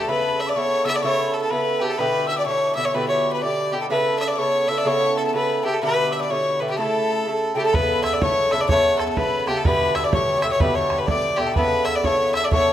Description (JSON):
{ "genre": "celtic folk, Celtic polka", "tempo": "125 BPM", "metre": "2/4", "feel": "swing 62% on 8ths", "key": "A mixolydian", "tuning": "A4 = 439 Hz", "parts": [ { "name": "clear fiddle", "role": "melody", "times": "0.0-12.7 s", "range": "G4 to E5", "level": "-21 LUFS", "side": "equal", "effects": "none" }, { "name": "breathy bright mid whistle", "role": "second line", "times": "0.0-12.7 s", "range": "G5 to E6", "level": "-27 LUFS", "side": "left 4 dB", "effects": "none" }, { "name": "Irish bouzouki", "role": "accompaniment", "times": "0.0-12.7 s", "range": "B2 to A4", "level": "-24 LUFS", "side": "right 1 dB", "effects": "none" }, { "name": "bodhran", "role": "percussion", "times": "7.7-12.7 s", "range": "none", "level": "-25 LUFS", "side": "right 2 dB", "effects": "none" } ], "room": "moderate recital hall reverb, RT60 1.5 s", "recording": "none", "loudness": "-18 LUFS", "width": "side -11 dB against mid", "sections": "0.1-7.7 A section; 7.7-12.7 A section", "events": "none", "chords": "0.1 Aadd9; 2.0 Em7; 3.9 Aadd9; 5.8 Em7; 6.8 A; 7.7 Aadd9; 9.7 Em7; 11.6 Aadd9" }